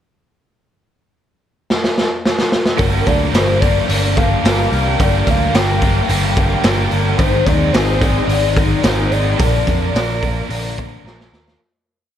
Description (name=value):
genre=rock, shoegaze and dream pop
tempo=109 BPM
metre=4/4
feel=straight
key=G phrygian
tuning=A4 = 436 Hz
part: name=raw garage drum kit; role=drums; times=1.7-11.6 s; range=hi-hat, kick drum, snare drum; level=-17 LUFS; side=equal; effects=none
part: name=pure sine lead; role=melody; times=2.8-11.0 s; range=Bb4 to G5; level=-22 LUFS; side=left 2 dB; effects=chorus, phaser, analog delay
part: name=string machine, violins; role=sustained chords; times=2.8-11.6 s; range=Eb4 to D6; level=-27 LUFS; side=equal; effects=ensemble chorus
part: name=biting overdriven guitar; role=riff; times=2.8-11.6 s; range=G2 to Bb4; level=-22 LUFS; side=right 10 dB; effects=reverse reverb
part: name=crunchy overdriven guitar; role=riff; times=2.8-11.6 s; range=G2 to Bb4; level=-23 LUFS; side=left 13 dB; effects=wide subtle chorus
part: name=picked electric bass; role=bass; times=2.8-11.6 s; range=G1 to F2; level=-18 LUFS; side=equal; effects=none
room=light reverb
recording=none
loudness=-13 LUFS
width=side -10 dB against mid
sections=0.6-2.8 pickup bar; 2.8-11.6 verse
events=drum fill 1.7-2.8, 11.0-11.6; fade-out 9.4-11.6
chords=0.6 N.C.; 2.8 Gm7; 7.2 Abmaj7; 9.4 Bb